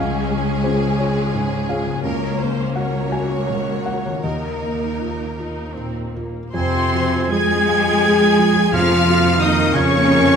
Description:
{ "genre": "cinematic, emotional film score for orchestra", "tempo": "54 BPM (dotted quarters)", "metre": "6/8", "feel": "uneven beats, rubato", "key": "unclear", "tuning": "A4 = 439 Hz", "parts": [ { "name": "warm studio violin section", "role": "melody", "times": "0.0-10.4 s", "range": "Ab4 to Ab6", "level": "-26 LUFS", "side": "left 2 dB", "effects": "none" }, { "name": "clear studio violin section", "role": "second line", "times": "0.0-10.4 s", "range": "Ab4 to Ab5", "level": "-26 LUFS", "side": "left 2 dB", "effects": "none" }, { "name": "felt-muted upright piano", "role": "accompaniment", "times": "0.0-10.4 s", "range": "Db2 to Ab5", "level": "-25 LUFS", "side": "right 1 dB", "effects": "none" }, { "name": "rich studio viola section", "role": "accompaniment", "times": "0.0-10.4 s", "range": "Ab3 to Ab4", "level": "-26 LUFS", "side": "right 2 dB", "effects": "none" }, { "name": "concert harp", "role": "arpeggios", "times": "0.0-10.4 s", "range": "F2 to F5", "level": "-27 LUFS", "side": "left 7 dB", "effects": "none" }, { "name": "rich studio cello section", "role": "bass", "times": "0.0-10.4 s", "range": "Db2 to Ab3", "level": "-23 LUFS", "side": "right 3 dB", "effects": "none" }, { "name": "clear oboe", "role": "second line", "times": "6.5-10.4 s", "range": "F5 to Ab5", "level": "-23 LUFS", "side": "right 1 dB", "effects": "none" }, { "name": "warm clarinet", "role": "second line", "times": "6.5-10.4 s", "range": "C4 to Ab4", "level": "-24 LUFS", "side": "left 1 dB", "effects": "none" }, { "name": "rich studio double bass section", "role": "bass", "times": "6.5-10.4 s", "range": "F2", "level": "-23 LUFS", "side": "right 5 dB", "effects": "none" }, { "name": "mellow French horn section", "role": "sustained chords", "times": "6.6-10.4 s", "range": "C4 to Ab4", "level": "-22 LUFS", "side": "left 6 dB", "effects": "none" }, { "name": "timpani", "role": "percussion", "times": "8.7-9.7 s", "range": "F2", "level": "-27 LUFS", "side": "equal", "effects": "none" } ], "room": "wet scoring stage reverb, RT60 2.0 s", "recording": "none", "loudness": "-16 LUFS", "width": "side -7 dB against mid", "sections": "0.0-6.5 A section; 6.5-10.4 B section", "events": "none", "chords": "0.0 Db; 2.0 Gb/Db; 4.2 Ebsus2; 6.5 Fm; 8.7 Bbm/F", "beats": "0.99 | 2.04 3.12 | 4.23 5.38 | 6.54 7.68 | 8.73 9.75" }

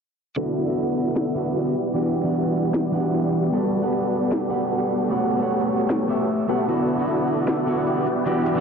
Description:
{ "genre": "future bass", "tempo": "152 BPM", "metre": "4/4", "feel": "swing 55% on 16ths, half-time", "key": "D major", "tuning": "A4 = 440 Hz", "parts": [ { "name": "electric guitar at the edge of break-up", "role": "accompaniment", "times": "0.4-8.6 s", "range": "D3 to F#5", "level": "-24 LUFS", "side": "right 2 dB", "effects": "digital delay" }, { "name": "dense compressed supersaw", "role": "riff", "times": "0.4-8.6 s", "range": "B3 to E5", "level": "-22 LUFS", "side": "left 1 dB", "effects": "low-pass filter, digital delay" }, { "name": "trap drum kit", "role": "drums", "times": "1.2-8.5 s", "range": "hi-hat, snare drum", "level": "-29 LUFS", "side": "left 1 dB", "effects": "overdrive" } ], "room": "light reverb, digital ambience", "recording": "low-pass filter", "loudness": "-20 LUFS", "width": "side -6 dB against mid", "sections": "0.4-8.6 A section", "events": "none", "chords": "0.4 D69; 1.8 Em9; 3.5 Gmaj9; 5.1 A13; 6.7 D69; 8.1 Em9", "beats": "| 0.37 0.77 1.16 1.55 | 1.95 2.35 2.74 3.13 | 3.53 3.92 4.32 4.71 | 5.11 5.50 5.90 6.29 | 6.69 7.08 7.48 7.87 | 8.27" }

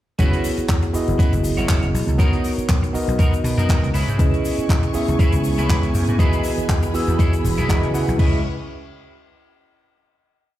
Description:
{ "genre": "nu-disco, nu disco", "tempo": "120 BPM", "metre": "4/4", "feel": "swing 56% on 16ths", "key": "C# dorian", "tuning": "A4 = 441 Hz", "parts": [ { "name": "tine electric piano", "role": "accompaniment", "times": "0.2-8.4 s", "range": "E3 to E6", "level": "-23 LUFS", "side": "right 1 dB", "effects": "medium stereo tremolo, digital delay" }, { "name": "clean electric guitar", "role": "riff", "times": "0.2-8.4 s", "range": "B3 to C#5", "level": "-29 LUFS", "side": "right 1 dB", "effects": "analog chorus, digital delay" }, { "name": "vintage slap bass", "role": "bass", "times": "0.2-8.4 s", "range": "E1 to C#3", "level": "-22 LUFS", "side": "equal", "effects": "tube saturation" }, { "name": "electronic kick drum", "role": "drums", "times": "0.2-8.3 s", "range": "none", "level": "-17 LUFS", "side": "equal", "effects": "studio reverb" }, { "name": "tight funk drum kit", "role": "drums", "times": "0.2-8.3 s", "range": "crash cymbal, handclaps, hi-hat, shaker", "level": "-31 LUFS", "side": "left 1 dB", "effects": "studio reverb" }, { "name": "dark studio string section", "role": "sustained chords", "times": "4.2-8.4 s", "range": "B3 to C#6", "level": "-30 LUFS", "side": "left 2 dB", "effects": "sidechain pumping" } ], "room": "small room ambience", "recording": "played on a big sound system in a bare room, large studio reverb", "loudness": "-16 LUFS", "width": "side -14 dB against mid", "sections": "0.2-8.2 drop; 8.2-10.2 final chord", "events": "drop 0.2-8.2", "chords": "0.2 F#7sus4; 2.2 Bmaj7; 3.9 C#m7; 6.2 Emaj7; 8.2 C#m7", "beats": "| 0.19 0.69 1.19 1.69 | 2.19 2.69 3.19 3.69 | 4.19 4.69 5.19 5.69 | 6.19 6.69 7.19 7.69 | 8.19" }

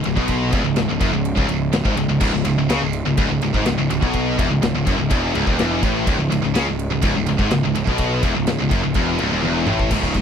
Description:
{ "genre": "heavy metal", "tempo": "125 BPM", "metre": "4/4", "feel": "straight", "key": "C# minor", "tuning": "A4 = 440 Hz", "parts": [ { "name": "heavy high-gain guitar", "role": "riff", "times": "0.0-10.2 s", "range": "C#2 to C#3", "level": "-24 LUFS", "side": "left 13 dB", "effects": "distortion" }, { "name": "heavy high-gain guitar", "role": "riff", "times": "0.0-10.2 s", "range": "C#2 to C#3", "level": "-23 LUFS", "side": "right 11 dB", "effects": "distortion" }, { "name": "high-gain distorted guitar", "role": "riff", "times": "0.0-9.9 s", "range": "C#2 to C#3", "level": "-25 LUFS", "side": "left 2 dB", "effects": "distortion" }, { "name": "fuzz picked electric bass", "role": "bass", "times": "0.0-10.2 s", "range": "C#1 to C#2", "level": "-23 LUFS", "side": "equal", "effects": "overdrive" }, { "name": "big rock drum kit", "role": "drums", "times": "0.0-10.2 s", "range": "crash cymbal, kick drum, ride cymbal, snare drum, toms", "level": "-23 LUFS", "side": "equal", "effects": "none" } ], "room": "little or no reverb", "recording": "dry, close 1970s-style studio recording", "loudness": "-17 LUFS", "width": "side -7 dB against mid", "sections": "0.0-9.9 A section", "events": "drum fill 9.4-9.9", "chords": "0.0 C#m", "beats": "| 0.30 0.78 1.26 1.74 | 2.22 2.70 3.18 3.66 | 4.14 4.62 5.11 5.59 | 6.07 6.55 7.03 7.51 | 7.99 8.47 8.96 9.44 | 9.92" }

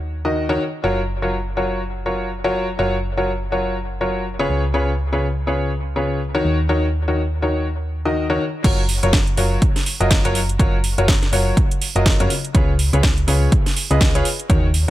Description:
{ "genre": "piano house", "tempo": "123 BPM", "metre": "4/4", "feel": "swing 58% on 16ths", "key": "F# major", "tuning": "A4 = 439 Hz", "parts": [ { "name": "solid FM bass", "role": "bass", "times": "0.0-14.9 s", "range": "F#1 to F#2", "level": "-21 LUFS", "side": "equal", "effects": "sidechain pumping" }, { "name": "clear upright piano", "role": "riff", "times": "0.2-14.7 s", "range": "C#3 to D#5", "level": "-21 LUFS", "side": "left 1 dB", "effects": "sidechain pumping, dub echo" }, { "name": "electronic kick drum", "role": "drums", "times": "8.6-14.6 s", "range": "none", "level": "-18 LUFS", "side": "equal", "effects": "overdrive" }, { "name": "house drum kit", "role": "drums", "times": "8.6-14.9 s", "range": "crash cymbal, hi-hat, snare drum", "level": "-23 LUFS", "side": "right 2 dB", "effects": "low-pass filter on hats, low-pass filter on cymbals, low-pass filter on snare, low-pass filter on room" } ], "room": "digital ambience", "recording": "none", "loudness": "-17 LUFS", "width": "side -15 dB against mid", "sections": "0.0-8.6 A section; 8.6-14.9 B section", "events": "drop 8.6-14.9", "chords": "0.0 D#m7; 0.8 F#maj7; 4.5 C#7; 6.4 D#m7; 8.6 F#maj7; 12.3 C#7; 14.3 D#m7", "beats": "0.35 | 0.84 1.33 1.81 2.30 | 2.79 3.28 3.77 4.25 | 4.74 5.23 5.72 6.21 | 6.69 7.18 7.67 8.16 | 8.64 9.13 9.62 10.11 | 10.60 11.08 11.57 12.06 | 12.55 13.03 13.52 14.01 | 14.50" }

